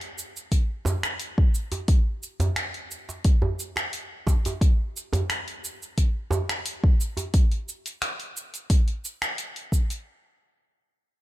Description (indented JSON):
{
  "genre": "downtempo",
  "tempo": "88 BPM",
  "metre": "4/4",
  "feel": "straight",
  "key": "none",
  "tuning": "none",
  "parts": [
    { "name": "deep house drum kit", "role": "drums", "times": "0.0-10.0 s", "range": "cabasa, finger snaps, hi-hat", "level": "-31 LUFS", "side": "equal", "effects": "none" },
    { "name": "electronic kick drum", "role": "drums", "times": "0.5-9.9 s", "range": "none", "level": "-20 LUFS", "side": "equal", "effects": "none" },
    { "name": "djembe", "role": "percussion", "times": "0.8-7.3 s", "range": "none", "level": "-28 LUFS", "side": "right 1 dB", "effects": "none" }
  ],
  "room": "digital ambience",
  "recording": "none",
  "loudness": "-23 LUFS",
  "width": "side -16 dB against mid",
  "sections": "0.0-10.1 A section",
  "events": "none",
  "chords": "none"
}